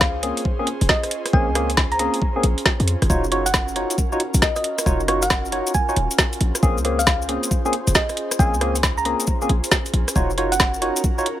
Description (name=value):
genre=UK garage, two-step garage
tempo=136 BPM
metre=4/4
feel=swing 65% on 16ths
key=Eb dorian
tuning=A4 = 440 Hz
part: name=thumb-piano-like synth pluck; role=melody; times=0.0-10.7 s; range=Eb5 to Bb5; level=-26 LUFS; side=equal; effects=chorus, tape echo
part: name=airy breathy pad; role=sustained chords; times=0.0-11.4 s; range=Db4 to C5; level=-30 LUFS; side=equal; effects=chorus, sidechain pumping
part: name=short 808-style bass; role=bass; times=0.0-10.9 s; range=Eb1 to F2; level=-22 LUFS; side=equal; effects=none
part: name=electronic kick drum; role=drums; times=0.0-11.2 s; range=none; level=-22 LUFS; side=equal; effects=overdrive
part: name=garage drum kit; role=drums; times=0.0-11.4 s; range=hi-hat, rim click, snare drum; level=-20 LUFS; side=equal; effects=overdrive
part: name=barky tine electric piano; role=stabs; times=0.2-11.3 s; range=Bb3 to Db5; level=-24 LUFS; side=equal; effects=overdrive, analog chorus, tape echo
part: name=maracas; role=percussion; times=3.1-11.2 s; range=none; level=-27 LUFS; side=left 3 dB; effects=none
room=little or no reverb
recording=none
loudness=-18 LUFS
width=side -12 dB against mid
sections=0.0-11.4 A section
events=none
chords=0.0 Bbm9; 3.1 Ebm9; 6.4 Bbm9; 10.2 Ebm9